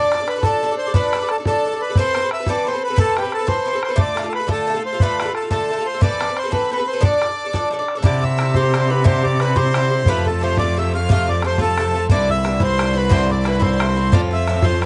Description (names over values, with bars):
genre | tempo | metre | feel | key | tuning
celtic folk, Celtic jig | 118 BPM (dotted quarters) | 6/8 | straight | D dorian | A4 = 441 Hz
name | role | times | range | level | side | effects
accordion | melody | 0.0-14.9 s | G4 to F5 | -23 LUFS | equal | none
Irish bouzouki | accompaniment | 0.0-14.9 s | G2 to D5 | -25 LUFS | equal | none
bodhran | percussion | 0.1-14.9 s | none | -22 LUFS | equal | none
warm cello | bass | 8.0-14.9 s | C2 to C3 | -22 LUFS | equal | none
room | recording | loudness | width
light reverb | dark, warm production, nothing above 10.8 kHz | -18 LUFS | mono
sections
0.0-8.0 A section; 8.0-14.9 B section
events
none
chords
0.0 Dm; 2.0 Amadd9; 4.0 Dm; 6.0 Amadd9; 7.0 Dm; 8.0 Cadd9; 10.1 F; 12.1 Cadd9; 14.1 F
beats
0.43 | 0.94 1.45 | 1.96 2.46 | 2.97 3.48 | 3.99 4.50 | 5.00 5.51 | 6.02 6.53 | 7.03 7.54 | 8.04 8.55 | 9.06 9.56 | 10.07 10.58 | 11.08 11.59 | 12.10 12.60 | 13.11 13.62 | 14.12 14.63